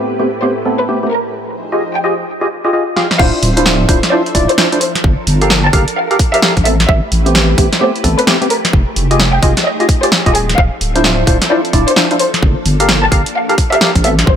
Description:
UK garage, two-step garage; 130 BPM; 4/4; swing 63% on 16ths; D minor; A4 = 440 Hz
soft string machine; sustained chords; 0.0-14.4 s; A2 to E5; -23 LUFS; left 1 dB; phaser, ensemble chorus, sidechain pumping
percussive organ stab; stabs; 0.0-14.1 s; A3 to F5; -16 LUFS; equal; lush chorus, cassette tape, tape echo
dark studio violin section; melody; 0.4-14.4 s; Ab4 to A5; -18 LUFS; equal; tape echo
punchy analog drum machine; drums; 3.0-14.3 s; crash cymbal, hi-hat, snare drum; -15 LUFS; equal; low-pass filter on snare, low-pass filter on cymbals, low-pass filter on hats, low-pass filter on room
deep soft wobble bass; bass; 3.2-14.4 s; D1 to A1; -14 LUFS; equal; chorus
electronic kick drum; drums; 3.2-14.4 s; -13 LUFS; equal
light reverb, digital ambience; -10 LUFS; side -8 dB against mid
0.0-3.2 A section; 3.2-14.4 B section
drum fill 3.0; drop 3.2-14.4
0.0 Am9; 1.3 Fm9; 3.2 Dm9; 4.8 Gm9; 6.7 Am9; 8.7 Fm9; 10.6 Dm9; 12.2 Gm9

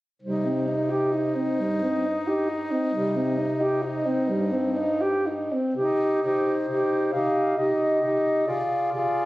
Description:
classical, lyrical piece for single-reed quartet; 44 BPM (dotted quarters); 6/8; uneven beats, rubato; C minor; A4 = 440 Hz
warm clarinet; melody; 0.2-9.3 s; C5 to F5; -30 LUFS; left 2 dB
warm alto saxophone; second line; 0.2-9.3 s; G3 to Ab4; -25 LUFS; right 1 dB
clear tenor saxophone; accompaniment; 0.2-9.3 s; Eb4 to F4; -27 LUFS; equal
mellow bass clarinet; bass; 0.2-9.1 s; G2 to C3; -32 LUFS; left 1 dB
moderate recital hall reverb, RT60 1.4 s; recorded on a phone in the room, studio ambience; -22 LUFS; side -17 dB against mid
0.2-5.8 A section; 5.8-9.3 B section
0.2 Cm; 8.5 Dm7b5/C

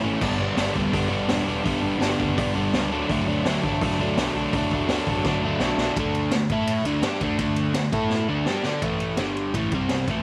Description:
garage rock duo or trio; 167 BPM; 4/4; straight; A4 = 439 Hz
crunchy overdriven guitar; riff; 0.0-10.2 s; G2 to D5; -26 LUFS; equal
growling picked electric bass; bass; 0.0-10.2 s; E1 to D3; -34 LUFS; equal; overdrive
raw garage drum kit; drums; 0.2-10.2 s; crash cymbal, hi-hat, kick drum, ride cymbal, snare drum; -30 LUFS; equal
light reverb, studio reverb; -24 LUFS; mono
0.0-6.0 A section; 6.0-8.8 B section; 8.8-10.2 C section
drum fill 5.2-6.0, 8.1-8.8
0.2 G; 2.9 D; 6.0 D5; 6.5 A5; 6.8 D5; 7.9 A5; 8.3 D5; 8.8 A5; 9.2 G5; 9.5 A5; 9.7 C5

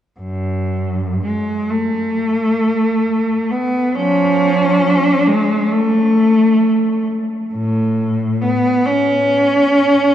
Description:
classical, free, expressive piece for unaccompanied cello; free time; A4 = 445 Hz
clear cello; solo; 0.2-10.1 s; F#2 to C#4; -13 LUFS; equal
wet cathedral reverb, RT60 5.0 s; dark, warm production; -14 LUFS; side -10 dB against mid
0.2-10.1 A section

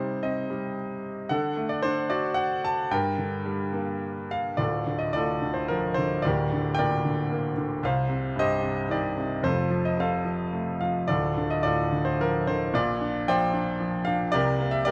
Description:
classical, lyrical solo piano; 112 BPM; 3/4; rubato; G minor; A4 = 445 Hz
clear grand piano; solo; 0.0-14.9 s; D1 to A5; -27 LUFS; equal
moderate recital hall reverb, RT60 1.8 s; dark, warm production; -27 LUFS; mono
0.0-4.6 A section; 4.6-14.9 B section
0.0 Cm; 1.3 D; 2.9 Gm; 4.6 Dm; 6.2 Gm/D; 7.8 Cm; 9.4 F; 11.1 Dm; 12.7 Bbadd9; 14.3 C7

